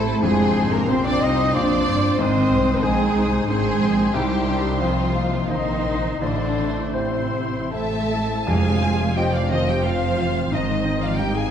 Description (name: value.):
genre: cinematic, emotional film score for orchestra.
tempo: 75-95 BPM.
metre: 3/4.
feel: rubato.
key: F dorian.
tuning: A4 = 440 Hz.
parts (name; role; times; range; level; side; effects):
rich studio violin section; melody; 0.0-11.5 s; Eb5 to Eb6; -31 LUFS; left 2 dB; none.
dark clarinet; second line; 0.0-8.1 s; Ab3 to E4; -30 LUFS; left 1 dB; none.
mellow silver concert flute; second line; 0.0-11.5 s; C5 to Eb6; -30 LUFS; left 1 dB; none.
warm studio violin section; second line; 0.0-11.5 s; C4 to F5; -28 LUFS; left 2 dB; none.
clear grand piano; accompaniment; 0.0-11.5 s; F1 to C5; -28 LUFS; left 1 dB; none.
warm studio viola section; accompaniment; 0.0-11.5 s; C3 to C5; -31 LUFS; right 1 dB; none.
mellow French horn section; sustained chords; 0.0-11.5 s; C3 to Eb4; -27 LUFS; left 3 dB; none.
concert harp; arpeggios; 0.0-11.5 s; F2 to C6; -31 LUFS; left 6 dB; none.
warm studio cello section; bass; 0.0-11.5 s; C3 to Eb4; -26 LUFS; right 4 dB; none.
warm studio double bass section; bass; 0.0-11.5 s; F1 to C2; -26 LUFS; right 3 dB; none.
timpani; percussion; 8.5-9.5 s; F2; -25 LUFS; right 1 dB; none.
room: wet concert hall reverb, RT60 1.9 s.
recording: dark, warm production.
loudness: -18 LUFS.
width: side -8 dB against mid.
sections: 0.0-8.5 A section; 8.5-11.5 B section.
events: none.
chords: 0.2 Fm; 2.2 Ab; 4.1 Cm; 6.2 Am; 8.5 Fm; 10.5 Ab.